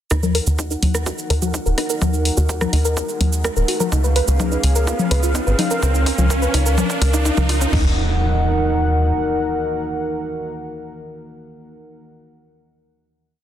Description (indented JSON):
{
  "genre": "melodic techno",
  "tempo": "126 BPM",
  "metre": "4/4",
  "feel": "straight",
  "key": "Eb minor",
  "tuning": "A4 = 440 Hz",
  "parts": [
    { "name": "dark analog pad", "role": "sustained chords", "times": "0.1-12.0 s", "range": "Db4 to Gb5", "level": "-25 LUFS", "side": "equal", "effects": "chorus, sidechain pumping" },
    { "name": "soft round pluck", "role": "arpeggios", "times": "0.1-8.0 s", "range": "Db4 to Cb5", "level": "-24 LUFS", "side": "equal", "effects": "chorus, sidechain pumping, digital delay" },
    { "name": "tight sequencer bass", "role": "bass", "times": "0.1-9.1 s", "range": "Eb1 to Eb2", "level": "-18 LUFS", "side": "equal", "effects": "sidechain pumping" },
    { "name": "electronic kick drum", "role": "drums", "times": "0.1-7.8 s", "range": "none", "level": "-25 LUFS", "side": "equal", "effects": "overdrive, high-pass filter on kick" },
    { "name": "punchy analog drum machine", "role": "drums", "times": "0.1-7.8 s", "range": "congas, crash cymbal, hi-hat, rim click, shaker", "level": "-23 LUFS", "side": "left 3 dB", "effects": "soft clipping on snare" },
    { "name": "riser and impact", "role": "sound effects", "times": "1.9-12.1 s", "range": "none", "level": "-27 LUFS", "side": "right 1 dB", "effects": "none" }
  ],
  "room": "light reverb, digital ambience",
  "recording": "dense, heavily limited modern master",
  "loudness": "-16 LUFS",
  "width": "side -10 dB against mid",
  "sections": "0.1-7.7 build; 7.7-11.5 final chord",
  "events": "build-up 0.1-7.7; filter sweep on synth arpeggio sound 0.1-7.7; riser 1.9-7.7; drum fill 3.9-7.7",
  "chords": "0.1 Ebm; 3.9 Db; 7.7 Ebm"
}